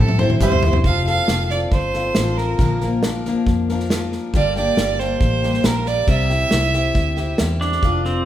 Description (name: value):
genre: honky-tonk and classic country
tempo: 137 BPM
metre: 4/4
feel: straight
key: F major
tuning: A4 = 440 Hz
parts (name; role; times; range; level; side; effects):
- pedal steel guitar; melody; 0.0-0.4, 7.6-8.3 s; C4 to E5; -24 LUFS; right 3 dB; none
- clear fiddle; second line; 0.0-7.4 s; A4 to F5; -22 LUFS; right 4 dB; none
- picked steel-string acoustic guitar; accompaniment; 0.0-8.3 s; G2 to C5; -24 LUFS; left 4 dB; none
- pedal steel guitar; sustained chords; 0.0-0.8 s; C5 to E5; -41 LUFS; left 2 dB; none
- vintage muted fingered electric bass; bass; 0.0-8.3 s; F1 to A2; -22 LUFS; equal; none
- natural country drum kit; drums; 0.1-8.1 s; hi-hat, kick drum, snare drum, toms; -20 LUFS; equal; none
- clear baby grand piano; accompaniment; 0.4-0.7 s; G4 to E5; -26 LUFS; right 2 dB; none
room: moderate recital hall reverb, RT60 1.5 s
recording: recorded in a church or concert hall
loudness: -16 LUFS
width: side -12 dB against mid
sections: 0.9-7.8 A section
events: drum fill 0.0-0.9; fiddle solo 0.9-7.8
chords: 0.0 C; 0.9 F; 2.6 Bb; 4.3 Gm; 6.1 C